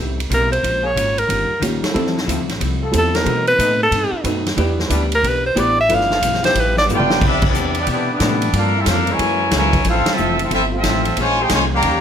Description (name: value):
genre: jazz, big band swing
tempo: 182 BPM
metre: 4/4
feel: swing 64% on 8ths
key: C major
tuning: A4 = 441 Hz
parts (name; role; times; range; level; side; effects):
- vintage hollow-body jazz guitar; accompaniment; 0.0-12.0 s; G2 to C5; -26 LUFS; left 4 dB; none
- warm trombone section; sustained chords; 0.0-6.9 s; E3 to B4; -28 LUFS; equal; none
- upright bass; bass; 0.0-12.0 s; F1 to B2; -22 LUFS; equal; none
- swinging big-band drum kit; drums; 0.2-11.9 s; crash cymbal, hi-hat, kick drum, ride cymbal, snare drum, toms; -22 LUFS; equal; none
- bright alto saxophone; melody; 0.3-6.8 s; A4 to F5; -16 LUFS; equal; plate reverb
- warm upright piano; accompaniment; 1.6-7.2 s; G3 to E5; -24 LUFS; right 2 dB; none
- bright trumpet section; melody; 6.9-12.0 s; B3 to Bb5; -18 LUFS; equal; none
- mellow trombone section; second line; 6.9-12.0 s; Db3 to G4; -24 LUFS; right 1 dB; none
room: moderate large studio reverb, RT60 0.8 s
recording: none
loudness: -15 LUFS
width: side -8 dB against mid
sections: 0.0-7.2 A section; 7.2-12.0 B section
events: alto saxophone solo 0.0-7.2; drum fill 6.9-7.2; band accent 7.4, 10.0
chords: 0.0 Am7; 0.6 Bbm7; 1.3 Eb9; 1.9 Fmaj7; 3.3 B7b9; 4.6 Em7; 5.9 G13; 7.2 Cmaj9; 8.5 Gm11; 9.2 F#9; 9.9 Fmaj7; 11.2 Bbm9